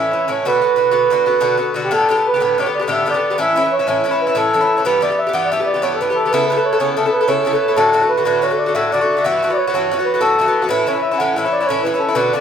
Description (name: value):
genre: celtic folk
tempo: 123 BPM (dotted quarters)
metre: 9/8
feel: straight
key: unclear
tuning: A4 = 440 Hz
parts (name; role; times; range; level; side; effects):
- mellow accordion; melody; 0.0-12.4 s; G4 to F#5; -16 LUFS; right 2 dB; none
- Irish bouzouki; accompaniment; 0.0-12.4 s; G2 to A4; -18 LUFS; left 4 dB; none
room: moderate large studio reverb, RT60 1.1 s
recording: band playing live in one room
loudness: -14 LUFS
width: side -8 dB against mid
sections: 0.0-1.9 A section; 1.9-12.4 B section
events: none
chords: 0.5 Bm; 1.9 Gadd9; 3.4 A; 4.8 Em/G; 6.3 Aadd9; 7.8 D; 9.2 Emadd9; 10.7 A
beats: | 0.45 0.94 1.43 | 1.92 2.41 2.90 | 3.38 3.87 4.36 | 4.85 5.34 5.83 | 6.31 6.80 7.29 | 7.78 8.26 8.75 | 9.23 9.72 10.21 | 10.69 11.18 11.66 | 12.15